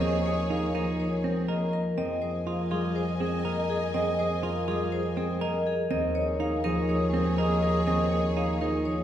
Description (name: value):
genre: classical, minimalist pattern music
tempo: 122 BPM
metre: 4/4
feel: straight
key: unclear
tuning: A4 = 440 Hz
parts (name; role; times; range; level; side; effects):
- vibraphone with medium hard mallets; melody; 0.0-9.0 s; Ab4 to F5; -32 LUFS; left 3 dB; none
- warm clarinet; second line; 0.0-9.0 s; Ab4; -35 LUFS; right 2 dB; none
- concert harp; accompaniment; 0.0-9.0 s; Eb3 to Bb3; -29 LUFS; left 1 dB; none
- rich symphonic string section; sustained chords; 0.0-9.0 s; Ab4 to Ab5; -37 LUFS; equal; none
- clean electric guitar; arpeggios; 0.0-8.9 s; C4 to Bb4; -34 LUFS; right 5 dB; none
- rich double bass; bass; 0.0-9.0 s; Eb2 to F2; -34 LUFS; right 2 dB; none
room: wet recital hall reverb, RT60 1.7 s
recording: heard from further back in the room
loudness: -25 LUFS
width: side -10 dB against mid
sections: 0.0-9.0 A section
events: none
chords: 0.0 Eb9sus4; 2.0 Fm11; 5.9 Eb9sus4